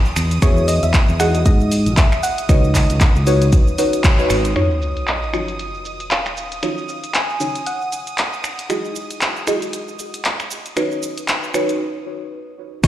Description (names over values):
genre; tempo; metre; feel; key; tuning
deep house; 116 BPM; 4/4; swing 57% on 16ths; Eb phrygian; A4 = 440 Hz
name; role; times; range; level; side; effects
deep mellow chord stab; stabs; 0.0-12.9 s; Db4 to E5; -23 LUFS; equal; chorus, sidechain pumping, ping-pong delay
analog string pad; texture; 0.0-12.9 s; Eb6; -32 LUFS; right 4 dB; ensemble chorus, sidechain pumping
punchy analog drum machine; drums; 0.1-12.9 s; crash cymbal, finger snaps, handclaps, hi-hat, shaker; -22 LUFS; equal; low-pass filter on snare, low-pass filter on hats, low-pass filter on perc, low-pass filter on cymbals, low-pass filter on room
fingered electric bass; bass; 0.2-4.5, 12.8-12.9 s; Ab1 to G#2; -17 LUFS; equal; none
soft round pluck; melody; 0.4-8.4, 12.8-12.9 s; Db5 to Ab5; -25 LUFS; equal; chorus, digital delay
electronic kick drum; drums; 0.4-4.2, 12.8-12.9 s; none; -14 LUFS; equal; none
sub drop; sound effects; 4.6-6.6, 12.8-12.9 s; none; -24 LUFS; equal; none
room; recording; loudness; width
light reverb; played on a big sound system in a bare room, stone room reverb; -16 LUFS; side -13 dB against mid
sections
0.0-4.6 A section; 4.6-12.8 B section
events
band accent 4.0; impact 4.6-6.6; break 11.8-12.8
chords
0.2 Emaj9; 2.5 Db9sus4; 4.6 Ebm9; 8.4 Emaj9; 10.8 Db9sus4